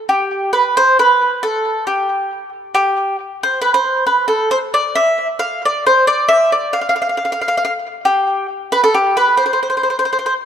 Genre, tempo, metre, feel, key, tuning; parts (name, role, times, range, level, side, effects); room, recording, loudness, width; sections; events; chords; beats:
italian folk; 136 BPM; 3/4; straight; C major; A4 = 439 Hz
mandolin; solo; 0.1-10.3 s; G4 to F5; -13 LUFS; equal; tape echo
moderate recital hall reverb, RT60 1.4 s; close, detailed microphones; -13 LUFS; side -8 dB against mid
0.1-10.5 A section
| 0.09 0.54 0.98 | 1.42 1.86 2.30 | 2.74 3.18 3.62 | 4.07 4.51 4.96 | 5.40 5.85 6.29 | 6.74 7.17 7.61 | 8.05 8.48 8.92 | 9.35 9.79 10.23